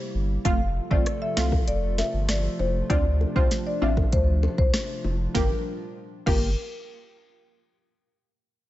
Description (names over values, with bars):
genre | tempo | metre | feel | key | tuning
dancehall | 98 BPM | 4/4 | straight | G dorian | A4 = 440 Hz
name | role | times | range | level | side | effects
hollow soft pad | sustained chords | 0.0-5.6 s | C3 to A4 | -34 LUFS | equal | chorus, sidechain pumping
saturated sub bass | bass | 0.1-6.6 s | F1 to D2 | -25 LUFS | equal | none
punchy chord stab | accompaniment | 0.4-6.5 s | A3 to G4 | -31 LUFS | right 2 dB | chorus
marimba with medium mallets | melody | 0.5-6.6 s | Bb4 to F5 | -30 LUFS | left 2 dB | none
afro-pop drum kit | drums | 0.5-6.4 s | crash cymbal, hi-hat, kick drum, rim click, snare drum | -25 LUFS | equal | none
bongos | percussion | 1.4-6.6 s | none | -37 LUFS | left 4 dB | none
room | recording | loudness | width
digital ambience | nothing above 7.8 kHz | -22 LUFS | side -15 dB against mid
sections
0.0-5.3 A section; 5.3-7.8 B section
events
none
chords
0.5 F; 2.9 Dm7; 5.3 Gm7